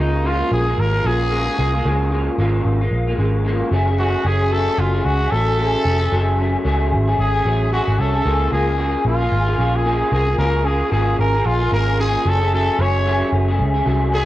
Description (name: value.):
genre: indie pop, bedroom pop.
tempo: 112 BPM.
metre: 4/4.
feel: swing 60% on 16ths.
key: Db major.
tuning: A4 = 441 Hz.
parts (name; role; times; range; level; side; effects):
growling trumpet; melody; 0.0-14.3 s; Eb4 to Db5; -22 LUFS; equal; lush chorus, cassette tape, analog delay.
electric guitar through a small old amp; accompaniment; 0.0-14.3 s; Db3 to Ab4; -21 LUFS; left 1 dB; ensemble chorus, warbly pitch drift.
vintage muted picked electric bass; bass; 0.0-14.3 s; F1 to Db2; -19 LUFS; equal; none.
room: light reverb.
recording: home recording on cassette, nothing above 10.5 kHz.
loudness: -16 LUFS.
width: side -15 dB against mid.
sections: 0.0-14.3 A section.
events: trumpet solo 0.0-14.3.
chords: 0.0 Db6; 3.7 Gbmadd9; 8.3 Db6; 12.3 Gbmadd9.